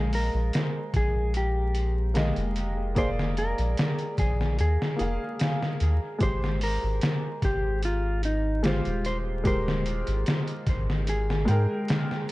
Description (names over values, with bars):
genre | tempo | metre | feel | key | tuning
trip hop | 74 BPM | 4/4 | straight | unclear | A4 = 439 Hz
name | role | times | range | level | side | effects
mellow electric guitar | melody | 0.0-12.3 s | Eb4 to C5 | -32 LUFS | equal | vintage 12-bit sampler grit, dub echo
felt-muted upright piano | accompaniment | 0.0-12.3 s | Ab3 to G5 | -32 LUFS | equal | harmonic tremolo, tape echo
soft dub sub bass | bass | 0.0-11.7 s | Eb1 to Ab2 | -27 LUFS | equal | none
trip hop sampler-style drum kit | drums | 0.1-12.3 s | hi-hat, kick drum, snare drum | -28 LUFS | equal | none
room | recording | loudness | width
little or no reverb | echo-heavy mix, vinyl crackle, nothing above 10.9 kHz | -24 LUFS | side -19 dB against mid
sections
0.0-12.3 A section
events
none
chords
0.0 Bb7sus4; 6.2 Abmaj7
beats
0.53 1.34 2.15 | 2.97 3.78 4.59 5.40 | 6.21 7.02 7.83 8.64 | 9.45 10.26 11.07 11.88